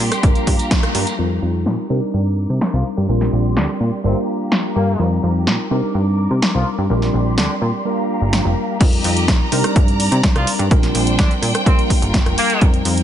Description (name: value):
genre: filtered disco house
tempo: 126 BPM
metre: 4/4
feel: straight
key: Bb major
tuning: A4 = 440 Hz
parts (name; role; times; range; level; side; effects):
- mellow tine electric piano; accompaniment; 0.0-13.0 s; G3 to Bb4; -22 LUFS; equal; phaser, sidechain pumping, low-pass filter
- bright symphonic violin section; sustained chords; 0.0-13.0 s; D4 to D6; -26 LUFS; equal; sidechain pumping, low-pass filter
- plucky analog bass; bass; 0.0-13.0 s; F1 to C3; -19 LUFS; equal; sidechain pumping, low-pass filter
- punchy analog drum machine; drums; 0.1-13.0 s; crash cymbal, hi-hat, rim click, snare drum; -21 LUFS; equal; overdrive, sidechain pumping on hats, low-pass filter on hats, studio reverb, low-pass filter on snare, sidechain pumping on cymbals, low-pass filter on cymbals
- tambourine; percussion; 0.1-1.2 s; none; -35 LUFS; right 4 dB; sidechain pumping on perc, low-pass filter on perc
- electronic kick drum; drums; 0.2-0.8, 8.8-12.7 s; none; -15 LUFS; equal; overdrive, studio reverb
- clear horn section; melody; 2.7-12.7 s; C3 to F4; -25 LUFS; left 1 dB; vintage 12-bit sampler grit, sidechain pumping, low-pass filter
room: light reverb, studio reverb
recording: nothing above 10.9 kHz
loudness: -15 LUFS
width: side -10 dB against mid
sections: 0.0-1.2 A section; 1.2-8.8 B section; 8.8-13.0 C section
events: band accent 0.7; filter sweep on drum 1.2-8.8; filter sweep 1.2-8.8; drop 8.8-13.0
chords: 0.2 Gm7; 1.2 F9sus4; 1.9 Cm9; 3.1 Bb69; 4.0 Gm7; 5.0 F9sus4; 5.7 Cm9; 6.9 Bb69; 7.9 Gm7; 8.8 F9sus4; 9.5 Cm9; 10.7 Bb69; 11.7 Gm7